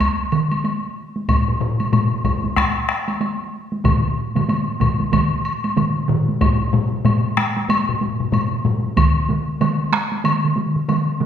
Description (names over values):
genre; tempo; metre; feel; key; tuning
japanese traditional, taiko drum ensemble; 94 BPM; 4/4; swing 60% on 16ths; none; none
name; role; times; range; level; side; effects
solo taiko drums; percussion; 0.0-11.3 s; none; -24 LUFS; right 1 dB; none
solo taiko drums; percussion; 0.0-9.2 s; none; -22 LUFS; right 1 dB; none
woodblock; percussion; 0.0-11.1 s; none; -25 LUFS; left 2 dB; none
taiko ensemble; percussion; 0.3-11.3 s; none; -21 LUFS; right 3 dB; none
taiko ensemble; percussion; 1.3-8.8 s; none; -21 LUFS; left 3 dB; none
room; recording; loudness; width
wet recital hall reverb, RT60 1.4 s; recorded in a church or concert hall; -17 LUFS; side -9 dB against mid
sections
0.0-6.4 A section; 6.4-11.3 B section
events
none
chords
none